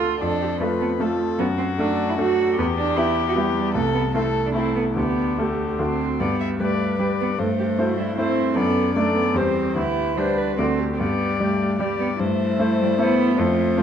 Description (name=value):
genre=quick classical-period movement for piano quartet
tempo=151 BPM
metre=3/4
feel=straight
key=G major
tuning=A4 = 442 Hz
part: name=warm violin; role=melody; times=0.0-13.8 s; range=D4 to E5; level=-27 LUFS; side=left 8 dB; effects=none
part: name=warm cello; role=second line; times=0.0-13.8 s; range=G3 to F#4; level=-24 LUFS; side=right 4 dB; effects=none
part: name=bright grand piano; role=accompaniment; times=0.0-13.8 s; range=C2 to D5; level=-23 LUFS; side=left 2 dB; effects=none
part: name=dark viola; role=accompaniment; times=0.0-13.8 s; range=E4 to C5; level=-29 LUFS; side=right 4 dB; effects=none
room=moderate recital hall reverb, RT60 1.4 s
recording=dark, warm production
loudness=-19 LUFS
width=side -8 dB against mid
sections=0.0-6.2 A section; 6.2-13.8 B section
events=none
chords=0.2 Dm/F; 1.4 D/F#; 2.6 Em; 3.8 Am/C; 5.0 Dsus4; 5.8 D; 6.2 G; 7.4 Am7/G; 8.6 D/F#; 9.4 C/E; 9.8 G/D; 10.6 D; 11.0 G; 12.2 Am7/G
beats=| 0.22 0.61 1.01 | 1.40 1.79 2.18 | 2.57 2.96 3.36 | 3.76 4.15 4.55 | 4.97 5.38 5.79 | 6.20 6.60 7.00 | 7.39 7.79 8.18 | 8.57 8.96 9.36 | 9.77 10.18 10.59 | 11.00 11.40 11.80 | 12.20 12.60 12.99 | 13.38 13.78